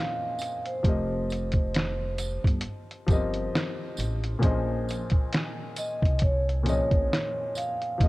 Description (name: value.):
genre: lo-fi hip hop.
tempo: 67 BPM.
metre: 4/4.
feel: swing 56% on 16ths.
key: Bb dorian.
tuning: A4 = 440 Hz.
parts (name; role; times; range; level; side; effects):
vibraphone with soft mallets; melody; 0.0-8.1 s; C5 to F5; -31 LUFS; right 1 dB; none.
dark upright piano; accompaniment; 0.0-8.1 s; Bb2 to Eb5; -32 LUFS; left 2 dB; cassette tape.
lo-fi sampler-style drum kit; drums; 0.4-8.1 s; hi-hat, kick drum, snare drum; -26 LUFS; equal; none.
tambourine; percussion; 0.4-7.8 s; none; -43 LUFS; right 5 dB; none.
upright bass; bass; 0.8-8.1 s; F1 to C2; -30 LUFS; equal; none.
room: light reverb, small room ambience.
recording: cassette tape.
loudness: -25 LUFS.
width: side -19 dB against mid.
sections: 0.0-8.1 A section.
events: none.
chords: 0.0 Bbm11; 0.8 F9sus4; 4.4 Bbm11.